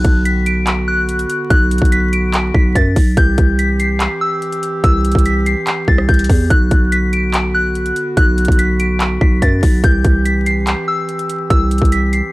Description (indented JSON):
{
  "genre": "hip hop, trap",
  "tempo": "144 BPM",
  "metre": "4/4",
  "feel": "half-time",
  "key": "B phrygian",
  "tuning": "A4 = 440 Hz",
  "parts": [
    { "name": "soft synth bell", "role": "melody", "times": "0.0-12.3 s", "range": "E6 to D7", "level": "-19 LUFS", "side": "left 1 dB", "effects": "chorus, analog delay" },
    { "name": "mellow woodwind section", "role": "sustained chords", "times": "0.0-12.3 s", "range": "D3 to G4", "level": "-23 LUFS", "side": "right 1 dB", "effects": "none" },
    { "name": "growling 808-style bass", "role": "bass", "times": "0.0-12.2 s", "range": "B1 to F#2", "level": "-15 LUFS", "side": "equal", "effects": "none" },
    { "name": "trap drum kit", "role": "drums", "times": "0.0-12.2 s", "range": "handclaps, hi-hat, kick drum, rim click", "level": "-14 LUFS", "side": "equal", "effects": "none" }
  ],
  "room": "little or no reverb",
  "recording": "dry, gritty hardware recording, vinyl crackle",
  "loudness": "-12 LUFS",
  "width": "side -20 dB against mid",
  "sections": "0.0-12.3 A section",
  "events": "none",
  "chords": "0.0 Bm; 3.2 C; 6.5 Bm; 9.8 C",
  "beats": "0.25 0.67 1.09 | 1.50 1.92 2.34 2.75 | 3.17 3.59 4.00 4.42 | 4.84 5.25 5.67 6.09 | 6.50 6.92 7.34 7.75 | 8.17 8.59 9.00 9.42 | 9.84 10.25 10.67 11.09 | 11.50 11.92"
}